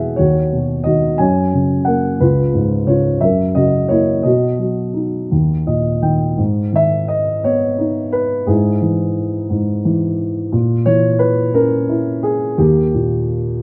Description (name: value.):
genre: classical, lyrical solo piano.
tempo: 58 BPM (dotted quarters).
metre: 6/8.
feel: rubato.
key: B major, G# harmonic minor from 6.4 s.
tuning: A4 = 440 Hz.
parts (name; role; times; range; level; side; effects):
dark baby grand piano; solo; 0.0-13.6 s; C#2 to G#5; -16 LUFS; equal; none.
room: light reverb.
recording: close, detailed microphones.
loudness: -16 LUFS.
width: mono.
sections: 0.0-6.4 A section; 6.4-13.6 B section.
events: grand piano fill 5.3-6.4.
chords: 0.2 Badd9/D#; 1.2 F#; 2.2 C#7; 3.2 F#; 4.3 B; 5.3 D#5; 6.4 G#m; 8.5 E/G#; 10.5 A#dim; 12.6 D#.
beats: | 0.17 1.19 | 2.21 3.23 | 4.25 5.31 | 6.39 7.44 | 8.48 9.51 | 10.53 11.55 | 12.59.